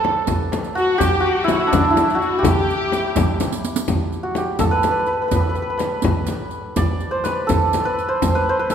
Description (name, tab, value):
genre	Persian modal ensemble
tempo	83 BPM (dotted quarters)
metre	6/8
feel	straight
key	G dastgah mahur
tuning	A4 = 440 Hz
part	santur	melody	0.0-8.7 s	D4 to D5	-20 LUFS	right 1 dB	slapback echo
part	dark studio violin section	second line	0.0-3.4 s	D4 to A4	-25 LUFS	right 2 dB	none
part	warm kamancheh	second line	0.0-3.4 s	D4 to A4	-25 LUFS	left 5 dB	none
part	frame drum	percussion	0.0-8.7 s	none	-23 LUFS	left 4 dB	none
part	tombak	percussion	0.0-8.7 s	none	-24 LUFS	right 1 dB	none
part	riq	percussion	0.3-8.7 s	none	-29 LUFS	right 5 dB	none
room	wet recital hall reverb, RT60 1.7 s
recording	none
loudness	-17 LUFS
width	side -8 dB against mid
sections	0.0-3.9 A section; 3.9-8.7 B section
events	drum fill 3.4-3.9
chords	none